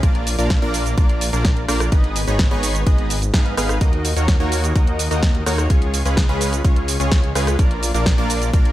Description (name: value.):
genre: EDM, festival progressive house.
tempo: 127 BPM.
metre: 4/4.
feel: straight.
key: Eb minor.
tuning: A4 = 436 Hz.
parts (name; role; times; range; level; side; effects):
supersaw stab; riff; 0.0-8.7 s; Ab3 to F5; -22 LUFS; equal; sidechain pumping, tape echo.
detuned saw bass; bass; 0.0-8.7 s; Ab1 to Ab2; -22 LUFS; equal; sidechain pumping.
electronic kick drum; drums; 0.0-8.6 s; none; -16 LUFS; equal; none.
house drum kit; drums; 0.0-8.7 s; hi-hat, rim click, shaker, snare drum; -24 LUFS; right 1 dB; none.
room: digital ambience.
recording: none.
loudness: -16 LUFS.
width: side -14 dB against mid.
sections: 0.0-8.7 A section.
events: none.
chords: 0.0 Bb; 1.9 Abm; 3.8 Ebm; 5.7 Db; 7.6 Bb.